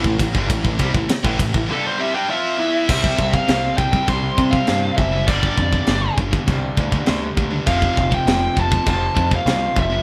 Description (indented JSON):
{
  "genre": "heavy metal",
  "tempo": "100 BPM",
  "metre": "4/4",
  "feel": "straight",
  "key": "unclear",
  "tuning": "A4 = 440 Hz",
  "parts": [
    { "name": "heavy high-gain guitar", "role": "riff", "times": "0.0-10.0 s", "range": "F2 to F4", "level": "-32 LUFS", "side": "equal", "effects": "none" },
    { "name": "high-gain distorted guitar", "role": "riff", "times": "0.0-10.0 s", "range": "F2 to F4", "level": "-28 LUFS", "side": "equal", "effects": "distortion" },
    { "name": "raw garage guitar", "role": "riff", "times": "0.0-10.0 s", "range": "F2 to F4", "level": "-29 LUFS", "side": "equal", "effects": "overdrive" },
    { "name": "growling picked electric bass", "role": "bass", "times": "0.0-10.0 s", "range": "F1 to C3", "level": "-25 LUFS", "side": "equal", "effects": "overdrive" },
    { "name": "tight metal drum kit", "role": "drums", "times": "0.0-9.9 s", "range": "china cymbal, crash cymbal, kick drum, ride cymbal, snare drum", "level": "-23 LUFS", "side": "equal", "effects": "none" },
    { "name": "high-gain lead guitar", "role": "melody", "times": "1.7-10.0 s", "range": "A4 to C6", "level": "-24 LUFS", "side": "equal", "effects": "distortion" }
  ],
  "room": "moderate studio ambience, RT60 0.5 s",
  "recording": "band playing live in one room",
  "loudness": "-19 LUFS",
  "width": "mono",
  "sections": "0.0-2.9 A section; 2.9-10.0 B section",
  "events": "lead electric guitar solo 0.0-2.9",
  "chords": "0.0 Am; 2.9 C5; 5.3 G5; 7.7 F5",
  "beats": "| 0.50 1.09 1.69 2.29 | 2.89 3.48 4.08 4.68 | 5.28 5.88 6.47 7.07 | 7.67 8.27 8.87 9.47"
}